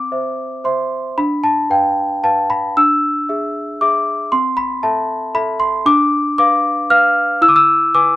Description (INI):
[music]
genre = classical, lullaby for celesta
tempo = 115 BPM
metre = 3/4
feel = rubato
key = unclear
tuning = A4 = 440 Hz
[part]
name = celesta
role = solo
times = 0.0-8.2 s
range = C4 to F6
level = -13 LUFS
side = left 1 dB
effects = none
[sound]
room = light reverb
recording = none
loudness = -13 LUFS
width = side -16 dB against mid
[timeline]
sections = 0.0-8.2 A section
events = none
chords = 0.0 C; 1.2 Bdim/D; 2.8 E7/D; 4.3 Am/C; 5.9 Bdim/D; 7.4 E